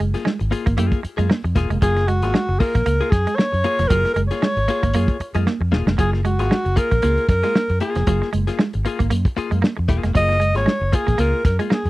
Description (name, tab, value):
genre	funk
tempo	115 BPM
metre	4/4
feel	swing 56% on 16ths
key	unclear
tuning	A4 = 439 Hz
part	direct-recorded clean electric guitar	accompaniment	0.0-11.9 s	Bb3 to Ab4	-27 LUFS	left 6 dB	spring reverb
part	semi-hollow electric guitar	riff	0.0-11.8 s	F3 to Bb3	-26 LUFS	right 6 dB	none
part	vintage muted fingered electric bass	bass	0.0-11.9 s	E1 to Gb2	-20 LUFS	equal	none
part	warm soul drum kit	drums	0.0-11.9 s	hi-hat, kick drum, snare drum	-20 LUFS	equal	none
part	breathy alto saxophone	melody	1.8-11.9 s	Gb4 to Eb5	-21 LUFS	equal	none
room	little or no reverb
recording	dry, close 1970s-style studio recording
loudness	-17 LUFS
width	side -18 dB against mid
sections	0.0-11.9 A section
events	drum fill 5.5-6.0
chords	0.0 Gbmaj9